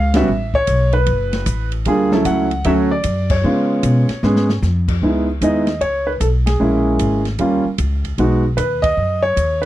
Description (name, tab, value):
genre	jazz piano trio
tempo	152 BPM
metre	4/4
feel	swing 66% on 8ths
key	C# minor from 5.0 s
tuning	A4 = 441 Hz
part	warm grand piano	melody	0.0-9.7 s	F#3 to F#5	-16 LUFS	right 1 dB	none
part	upright bass	bass	0.0-9.7 s	F#1 to C#3	-19 LUFS	equal	none
part	open jazz drum kit	drums	0.1-9.7 s	crash cymbal, hi-hat, kick drum, ride cymbal, snare drum	-25 LUFS	equal	none
room	little or no reverb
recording	dry, close 1970s-style studio recording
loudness	-14 LUFS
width	side -14 dB against mid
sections	0.0-5.0 A section; 5.0-9.7 B section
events	band accent 0.1, 3.2, 6.4, 8.8; drum fill 4.2-4.6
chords	0.3 A69; 1.9 Dmaj9; 3.4 C#7; 5.0 C#m9; 6.6 A#m7b5; 7.4 D#7; 8.2 G#m7 (rootless)